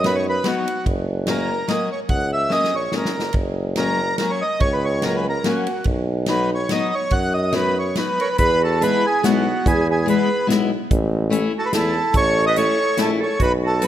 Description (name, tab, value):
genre	alpine folk, alpine dance band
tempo	144 BPM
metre	3/4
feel	swing 55% on 8ths, rubato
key	B major, E major from 8.4 s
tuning	A4 = 441 Hz
part	accordion	melody	0.0-13.9 s	F#4 to F#5	-21 LUFS	right 1 dB	none
part	picked steel-string acoustic guitar	accompaniment	0.0-13.9 s	F#3 to E4	-24 LUFS	left 4 dB	none
part	clear tuba	bass	0.0-13.9 s	F#1 to F#2	-23 LUFS	right 1 dB	none
part	natural country drum kit	drums	0.0-13.9 s	hi-hat, kick drum, ride cymbal, snare drum	-24 LUFS	equal	none
part	bright clarinet	second line	8.2-13.9 s	B3 to B4	-26 LUFS	right 4 dB	none
room	light reverb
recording	none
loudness	-17 LUFS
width	side -11 dB against mid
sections	0.0-8.4 A section; 8.4-13.9 B section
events	drum fill 2.5-3.4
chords	0.0 B; 0.9 F#; 5.9 B; 8.4 E; 10.9 A